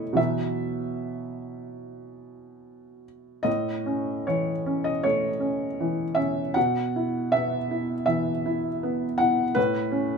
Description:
neoclassical minimalist piano; 72-81 BPM; 4/4; rubato; A4 = 440 Hz
felt-muted upright piano; solo; 0.0-10.2 s; A2 to F#5; -24 LUFS; equal
light reverb; minimal, uncompressed stereo recording; -24 LUFS; side -5 dB against mid
0.0-10.2 A section
0.2 Esus2/B; 3.5 A; 6.6 Esus2/B; 9.6 A

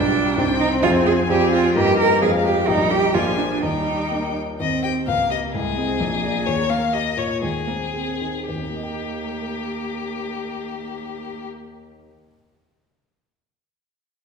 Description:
quick classical-period movement for piano quartet; 107-133 BPM; 2/4; straight; Eb major; A4 = 440 Hz
rich violin; melody; 0.0-11.5 s; G4 to Ab5; -26 LUFS; left 6 dB
rich cello; second line; 0.0-11.5 s; Ab3 to Bb4; -22 LUFS; right 3 dB
rich viola; accompaniment; 0.0-4.3 s; F3 to C4; -25 LUFS; right 1 dB
warm grand piano; accompaniment; 0.0-12.3 s; Bb1 to G5; -25 LUFS; left 2 dB
wet recital hall reverb, RT60 1.6 s; recorded in a church or concert hall; -19 LUFS; side -5 dB against mid
0.0-4.6 A section; 4.6-8.5 B section; 8.5-10.7 C section
slowing down 6.0-8.5
0.4 Cm; 0.8 Fm; 1.3 Ddim/F; 1.8 Eb/G; 2.2 Fm; 2.7 Eb/Bb; 3.1 Bb7; 3.6 Eb; 5.1 Eb7/Db; 5.5 Ab/C; 6.0 Bb7; 6.5 Eb; 7.4 Ab/Eb; 8.5 Eb

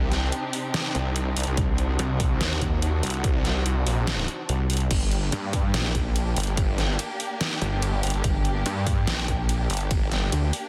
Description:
heavy wobble dubstep; 144 BPM; 4/4; half-time; G harmonic minor; A4 = 440 Hz
warm studio string section; sustained chords; 0.0-10.7 s; C3 to G4; -35 LUFS; equal; sidechain pumping
snarling distorted saw bass; bass; 0.0-10.3 s; G1 to G2; -28 LUFS; equal; distortion, overdrive
dubstep drum kit; drums; 0.1-10.6 s; crash cymbal, hi-hat, ride cymbal, snare drum; -32 LUFS; equal
wobble bass; bass; 1.6-10.5 s; G1 to Eb2; -27 LUFS; equal; chorus, overdrive
electronic kick drum; drums; 1.6-10.0 s; -28 LUFS; equal
light reverb; dense, heavily limited modern master; -25 LUFS; mono
0.0-10.7 A section
0.0 Cmadd9; 4.9 Gm

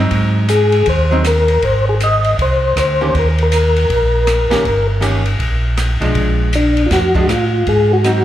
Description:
soul jazz organ trio; 159 BPM; 4/4; swing 63% on 8ths; A4 = 444 Hz
archtop guitar, miked and amplified; accompaniment; 0.0-8.2 s; Eb3 to G4; -21 LUFS; right 2 dB; slapback echo
mellow tonewheel organ; bass; 0.0-8.2 s; G1 to A2; -16 LUFS; equal; chorus vibrato, slow rotary speaker
open jazz drum kit; drums; 0.1-8.2 s; hi-hat, kick drum, ride cymbal, rim click, snare drum; -21 LUFS; equal
percussive tonewheel organ; melody; 0.5-8.2 s; D4 to Eb5; -15 LUFS; left 1 dB; slow rotary speaker, chorus vibrato, slapback echo
light reverb; live gig heard through the venue's PA, club reverb; -12 LUFS; side -12 dB against mid
0.0-8.2 A section
0.1 Ab7; 3.1 Eb; 6.2 Bb7; 7.7 Ab7

